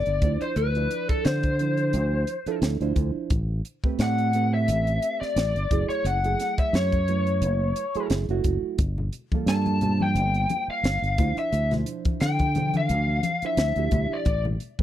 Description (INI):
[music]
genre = electric jazz fusion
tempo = 88 BPM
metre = 4/4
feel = swing 55% on 16ths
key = unclear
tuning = A4 = 439 Hz
[part]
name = lead guitar through a small cranked amp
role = melody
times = 0.0-14.4 s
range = A4 to A5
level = -27 LUFS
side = left 1 dB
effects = overdrive, slapback echo
[part]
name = silver concert flute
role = second line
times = 0.0-14.4 s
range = A4 to A5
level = -34 LUFS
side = left 11 dB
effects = none
[part]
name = barky reed electric piano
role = accompaniment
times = 0.0-14.8 s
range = E3 to D5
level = -31 LUFS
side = right 9 dB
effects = phaser
[part]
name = fingered electric bass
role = bass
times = 0.0-14.6 s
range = F#1 to D3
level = -25 LUFS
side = equal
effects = none
[part]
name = crisp fusion drum kit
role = drums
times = 0.1-14.8 s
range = hi-hat, kick drum, snare drum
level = -26 LUFS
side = equal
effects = none
[part]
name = congas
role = percussion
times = 9.0-14.8 s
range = none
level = -32 LUFS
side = left 4 dB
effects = none
[sound]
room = little or no reverb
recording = dry, close 1970s-style studio recording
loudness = -22 LUFS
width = side -12 dB against mid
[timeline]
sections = 0.0-14.8 A section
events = none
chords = 0.2 Dm9; 3.3 Am9; 5.7 F#m9; 8.8 Gm9; 11.2 Dm9; 14.3 N.C.